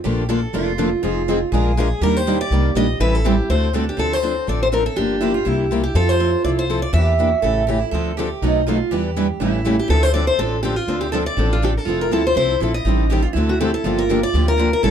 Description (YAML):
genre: acoustic string swing (jazz manouche)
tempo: 244 BPM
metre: 4/4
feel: swing 55% on 8ths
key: D minor from 4.0 s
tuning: A4 = 440 Hz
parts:
  - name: picked steel-string acoustic guitar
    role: second line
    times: 0.0-14.9 s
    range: C4 to A4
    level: -25 LUFS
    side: right 6 dB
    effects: none
  - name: picked steel-string acoustic guitar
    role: accompaniment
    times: 0.0-14.9 s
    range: B2 to Bb4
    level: -23 LUFS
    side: left 4 dB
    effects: none
  - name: picked steel-string acoustic guitar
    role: accompaniment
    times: 0.0-3.8, 7.9-14.9 s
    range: B2 to B4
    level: -24 LUFS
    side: right 7 dB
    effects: none
  - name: upright bass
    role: bass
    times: 0.0-14.9 s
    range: F1 to F2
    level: -21 LUFS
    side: equal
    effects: none
  - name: picked steel-string acoustic guitar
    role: melody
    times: 1.8-7.8, 9.8-14.9 s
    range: F4 to E5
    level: -21 LUFS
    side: left 1 dB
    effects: none
room: light reverb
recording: dark, warm production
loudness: -16 LUFS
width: side -8 dB against mid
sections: 0.0-4.0 A section; 4.0-11.9 B section; 11.9-14.9 C section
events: none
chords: 0.0 Bbmaj7; 1.0 Fm7; 1.5 Bb7; 2.0 Ebmaj7; 3.0 Am7; 3.5 D7; 4.0 Dm7; 5.0 Gm7; 5.5 C7; 6.0 Fmaj7; 6.9 Em7b5; 7.4 A7; 7.9 Dm7; 8.4 B7; 8.9 Em7; 9.4 A7; 9.9 Dm7; 11.9 Fmaj7; 12.8 Am7b5; 13.3 D7; 13.8 Gm7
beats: | 0.05 0.29 0.54 0.79 | 1.03 1.28 1.52 1.77 | 2.01 2.26 2.50 2.75 | 3.00 3.24 3.49 3.73 | 3.98 4.23 4.47 4.72 | 4.96 5.21 5.46 5.70 | 5.95 6.20 6.44 6.69 | 6.94 7.18 7.43 7.67 | 7.92 8.17 8.41 8.66 | 8.91 9.15 9.40 9.65 | 9.89 10.14 10.39 10.63 | 10.88 11.12 11.37 11.62 | 11.86 12.11 12.36 12.60 | 12.85 13.10 13.34 13.59 | 13.84 14.08 14.33 14.57 | 14.82